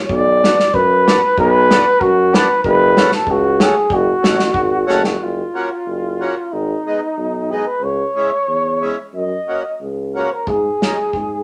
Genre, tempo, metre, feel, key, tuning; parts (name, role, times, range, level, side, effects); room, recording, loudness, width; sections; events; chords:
alpine folk, alpine dance band; 92 BPM; 2/4; rubato; F# minor, F# major from 5.2 s; A4 = 440 Hz
mellow flugelhorn; melody; 0.1-11.4 s; D#4 to D#5; -18 LUFS; equal
clear tuba; bass; 0.1-11.4 s; F#1 to G#2; -22 LUFS; equal
loose indie drum kit; drums; 0.1-5.2, 10.5-11.3 s; hi-hat, kick drum, snare drum; -22 LUFS; equal
accordion; accompaniment; 0.4-11.0 s; G#3 to F#4; -23 LUFS; equal
wet studio reverb, RT60 0.6 s; -16 LUFS; mono
0.0-5.2 A section; 5.2-11.4 B section
drum fill 4.9-5.2
0.1 Bm; 2.6 F#m; 5.2 F#; 6.5 G#m; 7.8 C#m; 9.1 F#; 10.5 C#sus2/G#